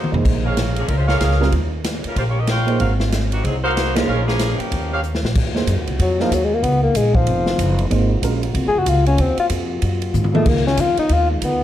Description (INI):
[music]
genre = jazz, big band swing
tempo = 188 BPM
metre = 4/4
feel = swing 62% on 8ths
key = Ab mixolydian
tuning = A4 = 440 Hz
[part]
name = bright saxophone section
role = melody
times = 0.0-5.0 s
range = Eb3 to G5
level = -24 LUFS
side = left 1 dB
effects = none
[part]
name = upright bass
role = bass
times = 0.0-11.6 s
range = F1 to Ab2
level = -20 LUFS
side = equal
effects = none
[part]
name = swinging big-band drum kit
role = drums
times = 0.0-11.5 s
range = crash cymbal, hi-hat, kick drum, ride cymbal, snare drum, toms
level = -23 LUFS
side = equal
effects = none
[part]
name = warm upright piano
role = accompaniment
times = 0.1-10.5 s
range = F3 to C5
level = -24 LUFS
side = right 6 dB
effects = none
[part]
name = warm trumpet section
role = stabs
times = 0.4-5.0 s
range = Gb4 to F5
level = -25 LUFS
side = right 2 dB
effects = none
[part]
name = dark trombone section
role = sustained chords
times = 5.4-11.6 s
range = C3 to Bb4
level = -28 LUFS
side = equal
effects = none
[part]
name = breathy tenor saxophone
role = melody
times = 6.0-11.6 s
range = F3 to Ab4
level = -18 LUFS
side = left 3 dB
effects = none
[sound]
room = light reverb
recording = dark, warm production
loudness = -16 LUFS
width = side -12 dB against mid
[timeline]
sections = 0.0-5.4 A section; 5.4-11.6 B section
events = drum fill 0.0, 5.0-5.4, 10.1-10.5; band accent 3.9; tenor saxophone solo 5.4-11.6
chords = 0.3 Eb13; 2.8 Ab13; 4.1 Bbm7; 4.7 Eb13; 5.4 Ab13; 6.6 Db13; 7.9 Ab13; 10.5 Db13